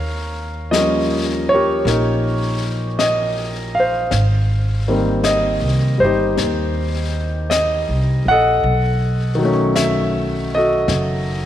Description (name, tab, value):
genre	jazz ballad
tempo	53 BPM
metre	4/4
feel	swing 69% on 8ths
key	Ab major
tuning	A4 = 440 Hz
part	clear concert grand piano	accompaniment	0.0-11.5 s	Eb3 to Gb5	-18 LUFS	equal	none
part	upright bass	bass	0.0-11.5 s	F#1 to Eb2	-20 LUFS	equal	none
part	jazz brush drum kit	drums	0.7-11.5 s	brushed snare drum, hi-hat, snare drum	-27 LUFS	left 7 dB	none
room	light reverb, studio reverb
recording	1960s-style stereo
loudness	-15 LUFS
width	side -11 dB against mid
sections	0.0-11.5 A section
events	none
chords	0.0 Eb7; 4.1 Abmaj7; 8.6 B9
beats	0.72 1.85 2.98 | 4.11 5.23 6.36 7.49 | 8.61 9.74 10.87